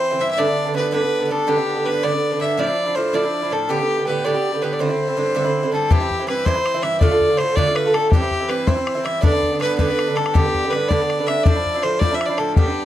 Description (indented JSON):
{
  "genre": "celtic folk, Celtic jig",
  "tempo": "108 BPM (dotted quarters)",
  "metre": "6/8",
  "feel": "straight",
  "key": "C major",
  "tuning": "A4 = 440 Hz",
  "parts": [
    { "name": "clear fiddle", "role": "melody", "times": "0.0-12.8 s", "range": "G4 to E5", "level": "-21 LUFS", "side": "left 1 dB", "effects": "none" },
    { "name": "Irish bouzouki", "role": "accompaniment", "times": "0.0-12.8 s", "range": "G2 to G4", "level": "-21 LUFS", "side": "right 3 dB", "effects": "none" },
    { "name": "bodhran", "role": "percussion", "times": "5.9-12.7 s", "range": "none", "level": "-18 LUFS", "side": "left 2 dB", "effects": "none" }
  ],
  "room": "moderate studio reverb, RT60 0.6 s",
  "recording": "dark, warm production",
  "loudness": "-17 LUFS",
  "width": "side -12 dB against mid",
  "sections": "0.0-5.9 A section; 5.9-12.8 A section",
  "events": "none",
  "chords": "0.4 G; 2.6 Dmadd9; 3.7 Gadd9; 4.8 Cadd9; 5.9 C; 7.0 Dm; 8.1 C; 9.2 G; 11.5 Dmadd9"
}